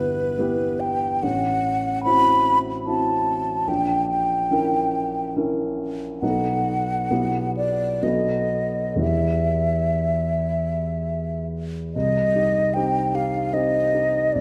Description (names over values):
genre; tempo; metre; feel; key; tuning
classical, romantic duo for flute and grand piano; 58-77 BPM; 3/4; rubato; E minor; A4 = 440 Hz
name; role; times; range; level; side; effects
mellow hollow concert flute; melody; 0.0-14.4 s; B4 to B5; -24 LUFS; equal; none
warm concert grand piano; accompaniment; 0.0-14.4 s; G1 to A#4; -26 LUFS; equal; none
room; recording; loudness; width
wet concert hall reverb, RT60 2.0 s; dark, warm production; -22 LUFS; mono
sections
0.0-11.9 A section; 11.9-14.4 B section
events
none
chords
0.0 Em/G; 1.2 F#m7b5/A; 3.7 A#dim7; 6.2 B7; 7.1 Em/B; 8.0 B7; 9.0 Em; 11.9 Cm